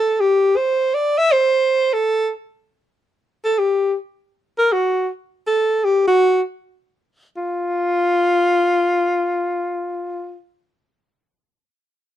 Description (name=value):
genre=jazz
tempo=free time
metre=none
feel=none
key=F major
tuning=A4 = 440 Hz
part: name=clear alto saxophone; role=solo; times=0.0-10.4 s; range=F4 to E5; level=-16 LUFS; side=equal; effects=none
room=little or no reverb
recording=dark, warm production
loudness=-16 LUFS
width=side -11 dB against mid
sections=0.0-2.8 A section; 2.8-7.3 B section; 7.3-9.6 C section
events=none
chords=none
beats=free time